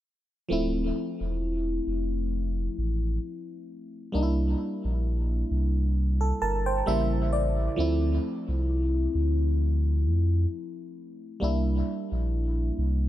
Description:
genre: contemporary R&B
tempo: 66 BPM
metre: 4/4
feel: swing 54% on 16ths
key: D minor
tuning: A4 = 440 Hz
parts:
  - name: FM electric piano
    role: accompaniment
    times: 0.5-13.1 s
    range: C#3 to A5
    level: -29 LUFS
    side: equal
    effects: chorus, phaser, dub echo
  - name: sub bass with octave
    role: bass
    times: 0.5-13.1 s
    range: D1 to F2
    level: -26 LUFS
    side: equal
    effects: none
room: little or no reverb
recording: echo-heavy mix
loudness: -25 LUFS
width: side -13 dB against mid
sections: 0.5-13.1 A section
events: FM electric piano fill 6.0-7.8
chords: 0.5 Dm9; 4.1 C9; 6.9 A7b9; 7.8 Dm9; 11.4 C9

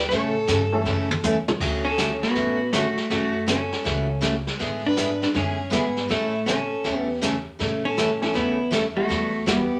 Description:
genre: country, western swing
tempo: 160 BPM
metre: 4/4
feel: swing 66% on 8ths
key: D major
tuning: A4 = 440 Hz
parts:
  - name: clear fiddle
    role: second line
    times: 0.0-9.8 s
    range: E4 to B4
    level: -32 LUFS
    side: equal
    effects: none
  - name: upright bass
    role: bass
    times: 0.0-9.7 s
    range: A1 to A2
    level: -34 LUFS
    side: equal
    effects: none
  - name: vintage hollow-body jazz guitar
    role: melody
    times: 0.1-9.8 s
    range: A3 to C#5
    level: -28 LUFS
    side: equal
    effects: none
  - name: picked steel-string acoustic guitar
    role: accompaniment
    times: 0.1-9.6 s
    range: C#3 to A4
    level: -29 LUFS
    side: equal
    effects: none
  - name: vintage brush drum kit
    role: drums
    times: 0.1-9.8 s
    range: brushed snare drum, crash cymbal, hi-hat, kick drum, snare drum, toms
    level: -30 LUFS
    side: equal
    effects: none
  - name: honky-tonk upright piano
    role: accompaniment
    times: 0.7-0.8, 8.2-9.7 s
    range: E3 to A4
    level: -31 LUFS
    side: equal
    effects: none
room: wet studio reverb, RT60 0.5 s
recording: none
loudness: -24 LUFS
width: mono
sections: 0.0-1.6 A section; 1.6-9.8 B section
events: drum fill 0.9-1.6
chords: 0.1 A; 1.6 Dmaj7; 3.1 F#m7; 4.6 E7/G#; 6.1 A; 9.1 Emadd9

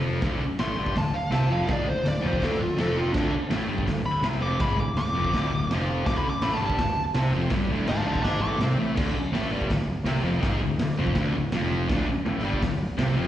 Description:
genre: garage rock duo or trio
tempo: 165 BPM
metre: 4/4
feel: straight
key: unclear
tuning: A4 = 439 Hz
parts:
  - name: thick fuzz guitar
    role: riff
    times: 0.0-13.3 s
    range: D2 to C4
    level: -27 LUFS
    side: equal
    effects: distortion, slapback echo
  - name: fuzz picked electric bass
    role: bass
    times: 0.0-13.3 s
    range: D1 to C2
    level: -28 LUFS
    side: equal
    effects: overdrive
  - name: raw garage drum kit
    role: drums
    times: 0.2-13.1 s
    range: crash cymbal, hi-hat, kick drum, snare drum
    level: -30 LUFS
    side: equal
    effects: vintage 12-bit sampler grit
  - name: fuzz lead guitar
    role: melody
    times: 0.6-8.6 s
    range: D4 to D6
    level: -29 LUFS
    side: equal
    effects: distortion, slapback echo, tape echo
room: light reverb, small room ambience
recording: live gig heard through the venue's PA, cassette tape, recital hall reverb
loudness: -23 LUFS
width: side -12 dB against mid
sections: 0.0-9.0 A section; 9.0-13.3 B section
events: lead electric guitar solo 0.0-9.0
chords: 0.0 D5

